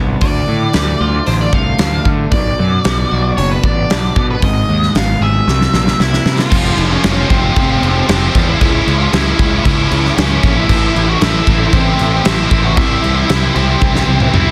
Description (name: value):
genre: quiet-loud alternative rock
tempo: 115 BPM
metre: 4/4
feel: straight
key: F harmonic minor from 6.5 s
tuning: A4 = 441 Hz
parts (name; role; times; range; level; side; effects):
- electric guitar at the edge of break-up; arpeggios; 0.0-6.5 s; Ab2 to Ab4; -22 LUFS; equal; subtle chorus
- fuzz picked electric bass; bass; 0.0-14.5 s; F1 to D3; -18 LUFS; equal; overdrive
- octave-fuzz lead guitar; melody; 0.2-14.5 s; C4 to Gb5; -21 LUFS; equal; distortion
- big rock drum kit; drums; 0.2-14.5 s; crash cymbal, hi-hat, kick drum, snare drum, toms; -18 LUFS; equal; none
- dark symphonic string section; sustained chords; 6.5-14.5 s; G4 to Db6; -29 LUFS; equal; none
- scooped high-gain guitar; riff; 6.5-14.5 s; A2 to F4; -20 LUFS; equal; distortion
room: little or no reverb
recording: dense, heavily limited modern master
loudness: -13 LUFS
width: mono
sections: 0.0-6.5 A section; 6.5-14.5 B section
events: drum fill 5.5-6.5, 13.8-14.5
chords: 0.2 Dm; 2.3 Bm; 4.4 Abm; 5.5 C7; 6.5 Fm; 8.6 Dbm; 10.7 Am; 12.8 C